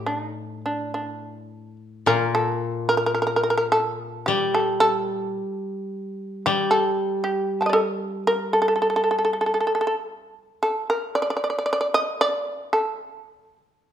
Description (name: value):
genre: japanese traditional, Japanese chamber music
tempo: 51-59 BPM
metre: 4/4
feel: rubato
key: unclear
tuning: A4 = 439 Hz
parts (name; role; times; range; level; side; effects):
- shamisen; melody; 0.0-13.9 s; D4 to A5; -22 LUFS; right 1 dB; none
- koto; accompaniment; 0.0-9.6 s; A2 to G3; -27 LUFS; left 1 dB; none
room: moderate recital hall reverb, RT60 1.3 s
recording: none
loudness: -21 LUFS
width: side -10 dB against mid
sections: 0.0-2.1 A section; 2.1-13.9 B section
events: none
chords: none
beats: 0.95 | 2.08 3.19 4.29 5.39 | 6.47 7.52 8.54 9.57 | 10.61 11.66 12.71 13.76